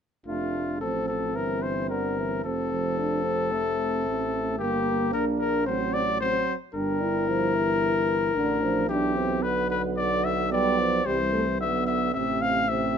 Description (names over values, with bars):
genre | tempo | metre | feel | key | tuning
classical, brass quintet | 111 BPM | 4/4 | straight | unclear | A4 = 440 Hz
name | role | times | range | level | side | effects
clear trumpet | melody | 0.3-13.0 s | F4 to F5 | -26 LUFS | left 4 dB | none
clear trombone | accompaniment | 0.3-13.0 s | C3 to Bb3 | -32 LUFS | right 5 dB | none
mellow French horn | accompaniment | 0.3-13.0 s | G3 to E4 | -30 LUFS | right 2 dB | none
mellow tuba | bass | 0.3-13.0 s | F1 to C2 | -31 LUFS | right 3 dB | none
room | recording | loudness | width
light reverb | minimal, uncompressed stereo recording | -23 LUFS | side -7 dB against mid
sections
0.3-13.0 A section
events
none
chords
0.3 F; 1.4 Edim/G; 2.4 F; 4.6 Gm; 5.7 F#dim/A; 6.7 Gm; 8.9 G7/B; 11.1 C; 12.1 Am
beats
| 0.26 0.81 1.35 1.90 | 2.44 2.98 3.52 4.06 | 4.59 5.13 5.67 6.20 | 6.74 7.28 7.82 8.35 | 8.89 9.43 9.97 10.52 | 11.06 11.60 12.14 12.68